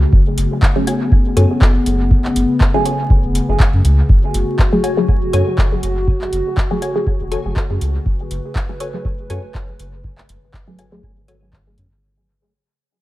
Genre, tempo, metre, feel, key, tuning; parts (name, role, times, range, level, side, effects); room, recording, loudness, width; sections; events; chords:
dub techno; 121 BPM; 4/4; swing 55% on 16ths; F# minor; A4 = 440 Hz
warbly tape-like pad; sustained chords; 0.0-12.0 s; C#3 to B4; -21 LUFS; left 1 dB; chorus, built-in reverb, sidechain pumping
soft dub sub bass; bass; 0.0-11.9 s; E1 to F#2; -17 LUFS; equal; sidechain pumping
electronic kick drum; drums; 0.1-11.6 s; -14 LUFS; equal
booming analog drum machine; drums; 0.4-11.9 s; handclaps, hi-hat; -26 LUFS; equal; dub echo
filtered dub chord stab; stabs; 0.8-11.0 s; F#3 to G#4; -22 LUFS; equal; phaser, sidechain pumping, dub echo
filtered dub chord stab; riff; 0.9-11.4 s; F#4 to G#5; -26 LUFS; left 3 dB; phaser, sidechain pumping, dub echo
light reverb, digital ambience; vinyl crackle, faint mains hum; -13 LUFS; side -16 dB against mid
0.0-12.0 A section
filter sweep on synth stab 0.0-12.0; fade-out 4.1-12.0
0.0 F#madd9